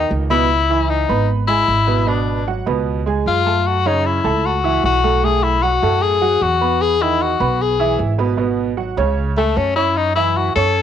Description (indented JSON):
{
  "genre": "jazz",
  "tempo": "152 BPM",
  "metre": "4/4",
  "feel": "straight",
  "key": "C# minor",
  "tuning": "A4 = 440 Hz",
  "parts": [
    { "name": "bright tenor saxophone", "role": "melody", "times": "0.0-10.8 s", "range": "A3 to A4", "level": "-17 LUFS", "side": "left 6 dB", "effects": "plate reverb" },
    { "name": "clear upright piano", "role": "accompaniment", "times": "0.0-10.8 s", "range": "A2 to C#6", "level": "-21 LUFS", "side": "right 8 dB", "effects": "cassette tape, plate reverb" },
    { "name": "upright bass", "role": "bass", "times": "0.0-10.8 s", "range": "G#1 to F#2", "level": "-20 LUFS", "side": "right 1 dB", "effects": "none" }
  ],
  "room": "moderate studio reverb, RT60 0.6 s",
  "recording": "home recording on cassette",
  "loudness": "-15 LUFS",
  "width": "side -9 dB against mid",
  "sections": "0.5-10.8 A section",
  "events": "tenor saxophone solo 0.0-10.8",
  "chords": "0.0 G#m (rootless); 0.5 C#m9; 2.1 G#m7b5; 2.9 C#7b13; 3.7 F#m7; 5.2 B5; 6.8 Emaj9; 8.4 G#m7; 9.2 A6/C#; 10.0 F#m7",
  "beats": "0.11 | 0.50 0.90 1.29 1.68 | 2.08 2.47 2.87 3.26 | 3.66 4.05 4.44 4.84 | 5.23 5.63 6.02 6.42 | 6.81 7.20 7.60 7.99 | 8.39 8.78 9.18 9.57 | 9.96 10.36 10.75"
}